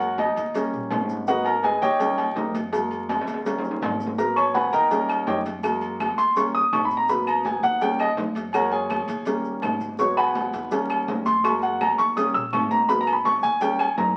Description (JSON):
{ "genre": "latin, salsa", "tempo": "165 BPM", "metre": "4/4", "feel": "straight", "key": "unclear", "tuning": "A4 = 440 Hz", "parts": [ { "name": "clear baby grand piano", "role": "accompaniment", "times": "0.0-14.2 s", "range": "F#3 to E6", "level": "-24 LUFS", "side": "equal", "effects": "none" }, { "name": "upright bass", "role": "bass", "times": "0.0-14.2 s", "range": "G#1 to F#2", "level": "-39 LUFS", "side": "equal", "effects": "none" }, { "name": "congas", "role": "percussion", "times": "0.0-14.2 s", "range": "none", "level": "-36 LUFS", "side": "equal", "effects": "none" }, { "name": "maracas", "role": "percussion", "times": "0.0-14.2 s", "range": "none", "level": "-56 LUFS", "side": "equal", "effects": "none" }, { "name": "cowbell", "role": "percussion", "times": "0.2-14.2 s", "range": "none", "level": "-35 LUFS", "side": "equal", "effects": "none" }, { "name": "timbales and agogo bells", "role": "percussion", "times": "0.2-14.2 s", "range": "none", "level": "-31 LUFS", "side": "equal", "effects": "none" }, { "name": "claves", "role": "percussion", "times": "4.4-14.0 s", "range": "none", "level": "-41 LUFS", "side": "equal", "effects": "none" } ], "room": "wet studio reverb, RT60 0.8 s", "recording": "very old 78 rpm record, vinyl crackle", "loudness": "-23 LUFS", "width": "mono", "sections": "0.0-14.2 A section", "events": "grand piano solo 0.0-14.2; drum fill 3.1-4.2", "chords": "0.0 F#; 0.5 D#7; 1.3 G#m7; 2.0 D#7; 2.7 F#add9; 3.5 D#7; 4.2 G#m7; 4.9 D#7; 5.6 F#add9; 6.4 D#7; 7.1 G#m7; 7.8 D#7; 8.5 F#add9; 9.3 D#7; 10.0 G#m7; 10.7 D#7; 11.4 F#add9; 12.2 D#7; 12.9 G#m7; 13.6 D#7" }